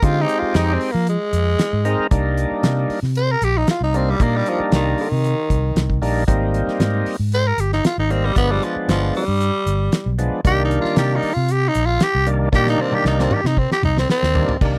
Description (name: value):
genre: straight-eighth soul blues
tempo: 115 BPM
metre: 4/4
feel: straight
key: C minor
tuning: A4 = 439 Hz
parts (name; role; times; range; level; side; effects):
- breathy tenor saxophone; second line; 0.0-14.6 s; Eb3 to C5; -23 LUFS; equal; none
- overdriven tonewheel organ; accompaniment; 0.0-14.8 s; Eb3 to Bb4; -24 LUFS; equal; slow rotary speaker
- fingered electric bass; bass; 0.0-14.8 s; G1 to F3; -22 LUFS; equal; none
- damped 70s drum kit; drums; 0.0-14.7 s; crash cymbal, hi-hat, kick drum, snare drum, toms; -23 LUFS; equal; none
room: little or no reverb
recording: dry, close 1970s-style studio recording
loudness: -19 LUFS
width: mono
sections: 0.0-14.6 A section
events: tenor saxophone solo 0.0-14.6; drum fill 12.5-14.6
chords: 0.0 Fm7; 2.1 Cm7; 6.3 Abmaj7; 8.4 G7b9; 10.4 Cm7